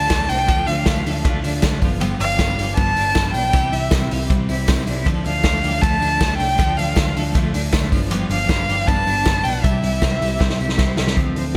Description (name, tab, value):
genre	jangly indie pop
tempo	157 BPM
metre	4/4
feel	straight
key	D minor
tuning	A4 = 436 Hz
part	warm violin	melody	0.0-10.8 s	E5 to A5	-24 LUFS	equal	slapback echo
part	picked steel-string acoustic guitar	accompaniment	0.0-11.6 s	G2 to A4	-29 LUFS	equal	slapback echo
part	twelve-string electric guitar	arpeggios	0.0-11.6 s	E3 to A4	-29 LUFS	equal	tremolo, slapback echo
part	vintage muted picked electric bass	bass	0.0-11.5 s	G1 to D2	-26 LUFS	equal	none
part	vintage drum kit	drums	0.1-11.6 s	hi-hat, kick drum, ride cymbal, snare drum	-22 LUFS	equal	none
part	tambourine	percussion	0.1-11.1 s	none	-42 LUFS	equal	none
room	light reverb, small room ambience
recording	none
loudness	-19 LUFS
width	mono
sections	0.0-11.2 A section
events	drum fill 10.4-11.2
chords	0.0 Dm; 1.8 G7; 3.5 C; 5.1 Dm; 7.9 G7; 9.6 C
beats	0.10 | 0.49 0.87 1.25 1.63 | 2.01 2.39 2.77 3.15 | 3.54 3.92 4.30 4.68 | 5.06 5.44 5.82 6.20 | 6.58 6.97 7.35 7.73 | 8.11 8.49 8.88 9.26 | 9.64 10.02 10.40 10.79 | 11.17 11.55